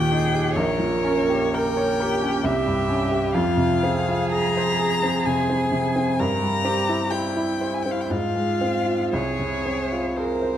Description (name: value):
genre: classical, slow romantic movement for piano trio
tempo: 63 BPM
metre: 3/4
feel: uneven beats, rubato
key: F minor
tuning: A4 = 439 Hz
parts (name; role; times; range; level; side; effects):
- warm violin; melody; 0.0-10.6 s; C5 to Bb5; -26 LUFS; left 5 dB; none
- rich cello; second line; 0.0-10.6 s; E4 to Bb4; -26 LUFS; right 4 dB; none
- clear grand piano; accompaniment; 0.0-10.6 s; Bb1 to Db5; -23 LUFS; equal; none
room: wet scoring stage reverb, RT60 1.5 s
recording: vinyl crackle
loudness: -20 LUFS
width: side -10 dB against mid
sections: 0.0-10.6 A section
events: none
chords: 0.0 Eb; 0.6 Gdim/Bb; 2.4 C; 3.3 Fm; 6.2 C7/G; 8.1 Fm/Ab; 9.1 Fm/C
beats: | 0.56 1.54 2.45 | 3.34 4.32 5.26 | 6.19 7.12 8.11 | 9.13 10.16